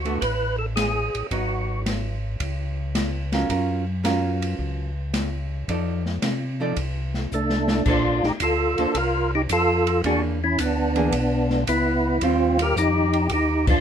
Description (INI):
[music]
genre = soul jazz organ trio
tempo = 110 BPM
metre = 4/4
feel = swing 69% on 8ths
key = Bb major from 7.9 s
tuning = A4 = 440 Hz
[part]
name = percussive tonewheel organ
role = melody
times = 0.0-1.8, 7.3-13.8 s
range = A3 to B4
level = -21 LUFS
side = equal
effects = slow rotary speaker, overdrive, chorus vibrato
[part]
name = archtop guitar, miked and amplified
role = accompaniment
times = 0.0-13.1 s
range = D3 to D5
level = -26 LUFS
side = right 3 dB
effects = none
[part]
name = mellow tonewheel organ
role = bass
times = 0.0-13.8 s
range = G#1 to C3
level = -26 LUFS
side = left 1 dB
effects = chorus vibrato, slow rotary speaker
[part]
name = open jazz drum kit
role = drums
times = 0.1-13.8 s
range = crash cymbal, hi-hat, kick drum, ride cymbal, snare drum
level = -28 LUFS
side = equal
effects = none
[sound]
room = light reverb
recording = minimal, uncompressed stereo recording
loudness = -21 LUFS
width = side -8 dB against mid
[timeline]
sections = 0.0-7.9 A section; 7.9-13.8 B section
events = drum fill 7.3-7.9; band accent 13.6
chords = 0.0 Bm7/A; 1.3 G#m7; 2.4 F#maj7; 5.7 F6; 7.9 Bbmaj9; 10.0 E7#11; 12.2 Eb69